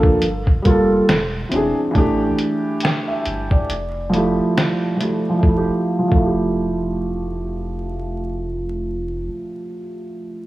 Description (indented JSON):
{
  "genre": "lo-fi hip hop",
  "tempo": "69 BPM",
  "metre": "4/4",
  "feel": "swing 58% on 16ths",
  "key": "F major",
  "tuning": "A4 = 440 Hz",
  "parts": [
    { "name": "felt-muted upright piano", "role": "accompaniment", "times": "0.0-10.5 s", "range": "E3 to G5", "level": "-19 LUFS", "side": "right 1 dB", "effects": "cassette tape, low-pass filter" },
    { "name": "warm sub bass", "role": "bass", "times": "0.0-9.3 s", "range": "E1 to Bb1", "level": "-27 LUFS", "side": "equal", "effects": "transformer saturation" },
    { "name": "lo-fi sampler-style drum kit", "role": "drums", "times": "0.0-6.3 s", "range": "hi-hat, kick drum, snare drum", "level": "-19 LUFS", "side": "equal", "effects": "vintage 12-bit sampler grit" }
  ],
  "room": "light reverb, small room ambience",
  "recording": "worn, warbling old tape, cassette tape, vinyl crackle, warbly pitch drift",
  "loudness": "-17 LUFS",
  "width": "side -16 dB against mid",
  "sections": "0.0-5.4 A section; 5.4-8.9 B section",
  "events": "filter sweep on felt piano 0.0-5.4; kick muted 3.7-5.4",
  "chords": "0.2 Gm9; 1.1 Eaug7; 1.9 A7sus4; 3.7 Fmaj9"
}